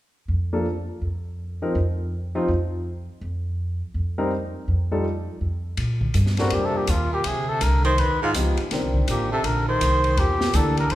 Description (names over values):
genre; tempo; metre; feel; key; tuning
jazz, small-group swing and bop; 164 BPM; 4/4; swing 64% on 8ths; Bb major; A4 = 439 Hz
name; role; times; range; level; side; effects
upright bass; bass; 0.3-10.9 s; A1 to Bb2; -24 LUFS; equal; none
clear concert grand piano; accompaniment; 0.5-10.8 s; Eb3 to Bb4; -26 LUFS; left 1 dB; none
open jazz drum kit; drums; 5.8-10.9 s; hi-hat, kick drum, ride cymbal, snare drum; -30 LUFS; equal; none
trumpet with cup mute; melody; 6.4-10.9 s; F4 to C5; -24 LUFS; left 1 dB; none
clear baritone saxophone; second line; 6.4-10.9 s; Ab2 to Eb3; -28 LUFS; right 3 dB; none
room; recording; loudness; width
moderate recital hall reverb, RT60 1.6 s; recorded in a church or concert hall; -21 LUFS; side -14 dB against mid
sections
0.0-5.8 A section; 5.8-10.9 B section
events
none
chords
0.0 N.C.; 1.4 F7(no3); 2.9 N.C.; 4.3 F9; 5.1 N.C.; 5.8 Bb69; 7.2 C7sus2; 8.0 Gaug7; 8.7 Cm9; 10.2 Em7b5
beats
0.29 0.66 1.02 | 1.39 1.76 2.12 2.49 | 2.86 3.22 3.59 3.96 | 4.32 4.69 5.05 5.42 | 5.79 6.15 6.52 6.88 | 7.25 7.61 7.98 8.35 | 8.71 9.08 9.44 9.81 | 10.18 10.54 10.91